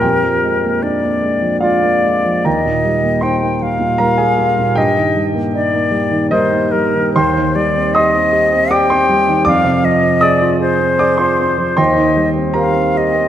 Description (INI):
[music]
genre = classical, romantic duo for flute and grand piano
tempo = 77 BPM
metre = 3/4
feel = rubato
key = Eb major, C minor from 7.1 s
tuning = A4 = 444 Hz
[part]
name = silver concert flute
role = melody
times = 0.0-13.3 s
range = Bb4 to G5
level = -16 LUFS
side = left 2 dB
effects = none
[part]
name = warm grand piano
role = accompaniment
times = 0.0-13.3 s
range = Eb2 to Eb6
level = -14 LUFS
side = right 1 dB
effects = none
[sound]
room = wet scoring stage reverb, RT60 1.9 s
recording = none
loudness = -12 LUFS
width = side -10 dB against mid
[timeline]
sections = 0.0-13.3 A section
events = none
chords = 0.0 Bb7/F; 2.5 Eb; 4.8 Eb/G; 7.1 Cm/Eb; 9.5 Fm; 11.8 Cm/Eb